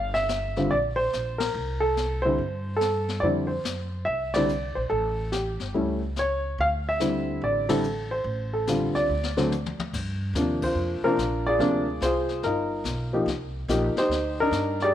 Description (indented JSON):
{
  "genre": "jazz piano trio",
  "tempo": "143 BPM",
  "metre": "4/4",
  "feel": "swing 65% on 8ths",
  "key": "G minor from 9.9 s",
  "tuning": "A4 = 436 Hz",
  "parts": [
    { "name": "dark baby grand piano", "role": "melody", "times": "0.0-14.9 s", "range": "C3 to F5", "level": "-24 LUFS", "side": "equal", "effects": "none" },
    { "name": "upright bass", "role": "bass", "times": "0.0-14.9 s", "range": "G1 to G2", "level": "-31 LUFS", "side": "equal", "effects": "none" },
    { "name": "jazz brush drum kit", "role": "drums", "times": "0.1-14.9 s", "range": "brushed snare drum, crash cymbal, hi-hat, kick drum, ride cymbal, snare drum, toms", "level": "-36 LUFS", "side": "left 5 dB", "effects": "none" }
  ],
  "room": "light reverb, small room reverb",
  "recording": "1960s-style stereo",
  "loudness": "-23 LUFS",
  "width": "side -11 dB against mid",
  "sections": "0.0-9.9 A section; 9.9-14.9 B section",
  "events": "band accent 1.3, 4.3, 7.6, 10.6; drum fill 9.1-9.9",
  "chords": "0.0 Gm; 1.5 C5; 3.2 Fsus2; 4.9 A7; 6.6 Dsus2; 8.3 A7alt; 9.1 N.C.; 9.9 Gm7; 11.6 Dm7b5; 12.4 G7alt; 13.3 Cm9",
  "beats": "0.29 0.71 1.13 | 1.55 1.97 2.38 2.80 | 3.22 3.64 4.06 4.48 | 4.90 5.32 5.74 6.16 | 6.58 6.99 7.41 7.83 | 8.25 8.67 9.09 9.51 | 9.93 10.34 10.76 11.18 | 11.60 12.02 12.44 12.86 | 13.27 13.69 14.11 14.53"
}